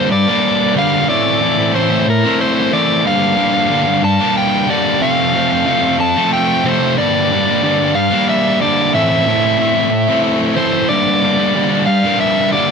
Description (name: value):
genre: rock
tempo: 92 BPM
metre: 3/4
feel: straight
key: G dorian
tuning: A4 = 440 Hz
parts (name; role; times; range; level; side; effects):
- overdriven electric guitar; melody; 0.0-12.7 s; Bb4 to A5; -16 LUFS; equal; none
- fuzz guitar; riff; 0.0-12.7 s; F2 to E4; -14 LUFS; equal; distortion
room: moderate huge ambient reverb, RT60 7.8 s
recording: none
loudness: -12 LUFS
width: side -6 dB against mid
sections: 0.0-12.7 A section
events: none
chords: 0.0 Gm; 1.1 Am; 3.1 Gm7; 5.0 F; 7.0 Gm; 8.9 Am; 10.9 Gm